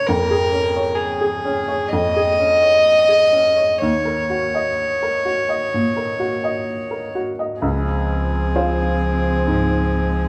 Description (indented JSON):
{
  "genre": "neoclassical piano and strings",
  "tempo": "64 BPM",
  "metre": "4/4",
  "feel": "rubato",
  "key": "Db major",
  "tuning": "A4 = 439 Hz",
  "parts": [
    { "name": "rich violin", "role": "melody", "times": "0.0-10.3 s", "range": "Ab4 to Eb5", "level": "-20 LUFS", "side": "equal", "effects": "none" },
    { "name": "felt-muted upright piano", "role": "accompaniment", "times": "0.0-10.3 s", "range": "Db2 to F5", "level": "-25 LUFS", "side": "equal", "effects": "none" },
    { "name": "warm cello", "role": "second line", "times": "7.6-10.3 s", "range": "F3", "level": "-27 LUFS", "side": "equal", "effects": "none" },
    { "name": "dark viola", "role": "accompaniment", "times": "7.6-10.3 s", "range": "C4", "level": "-29 LUFS", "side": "equal", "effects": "none" },
    { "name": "sub bass with octave", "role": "bass", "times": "7.6-10.3 s", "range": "Db2", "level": "-24 LUFS", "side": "equal", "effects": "none" }
  ],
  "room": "wet large studio reverb, RT60 1.1 s",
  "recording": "band playing live in one room",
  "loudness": "-19 LUFS",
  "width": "mono",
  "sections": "0.0-7.6 A section; 7.6-10.3 B section",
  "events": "none",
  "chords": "0.1 Db/F; 3.8 Ebm7; 7.6 Dbmaj7"
}